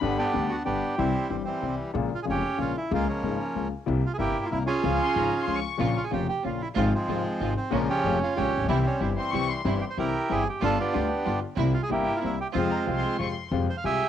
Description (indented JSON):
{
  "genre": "tango",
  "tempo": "187 BPM",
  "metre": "3/4",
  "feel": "rubato",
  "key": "F harmonic minor",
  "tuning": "A4 = 440 Hz",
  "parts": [
    { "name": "bandoneon", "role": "melody", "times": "0.0-14.1 s", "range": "Db3 to F5", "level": "-27 LUFS", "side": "right 2 dB", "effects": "cassette tape" },
    { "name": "warm chamber violin section", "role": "second line", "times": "0.0-0.1, 5.0-5.9, 9.2-9.7, 12.7-13.5 s", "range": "Bb5 to Db6", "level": "-34 LUFS", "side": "left 7 dB", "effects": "none" },
    { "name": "warm concert grand piano", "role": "accompaniment", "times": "0.0-14.0 s", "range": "F1 to G4", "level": "-29 LUFS", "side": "left 7 dB", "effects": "none" },
    { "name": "upright bass", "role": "bass", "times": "0.0-14.0 s", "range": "F1 to F2", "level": "-31 LUFS", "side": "right 2 dB", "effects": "none" },
    { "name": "clear symphonic string section", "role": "stabs", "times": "5.8-13.3 s", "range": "G3 to F4", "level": "-35 LUFS", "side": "right 9 dB", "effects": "none" }
  ],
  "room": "moderate spring reverb, RT60 1.6 s, small room ambience",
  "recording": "home recording on cassette",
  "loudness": "-24 LUFS",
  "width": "side -10 dB against mid",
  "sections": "0.0-13.5 A section",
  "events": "none",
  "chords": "0.0 G; 1.0 C; 1.9 Bbm7; 2.9 Db6; 3.9 C7; 4.8 Db; 5.8 Bbm; 6.8 Fm/Ab; 7.7 Bbm7; 8.7 C; 10.6 G7; 11.6 C7; 12.5 Fm; 13.5 Fmadd9",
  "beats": "| 0.02 0.34 0.66 | 0.98 1.30 1.62 | 1.94 2.27 2.59 | 2.91 3.23 3.55 | 3.87 4.19 4.51 | 4.83 5.16 5.48 | 5.80 6.12 6.45 | 6.77 7.09 7.41 | 7.73 8.05 8.37 | 8.69 9.02 9.34 | 9.66 9.98 10.31 | 10.63 10.95 11.27 | 11.59 11.91 12.23 | 12.55 12.87 13.20 | 13.52 13.84"
}